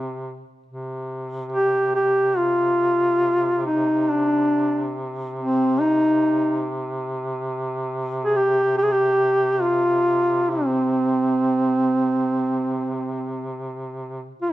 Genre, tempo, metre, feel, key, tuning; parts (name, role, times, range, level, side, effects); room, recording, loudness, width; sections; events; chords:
caucasian folk, Caucasian lament; free time; C minor; A4 = 440 Hz
mellow duduk; melody; 0.0-14.5 s; C4 to Ab4; -19 LUFS; equal
warm duduk; drone; 0.0-14.5 s; C3; -29 LUFS; equal
light reverb; close, detailed microphones; -19 LUFS; side -15 dB against mid
0.7-14.5 A section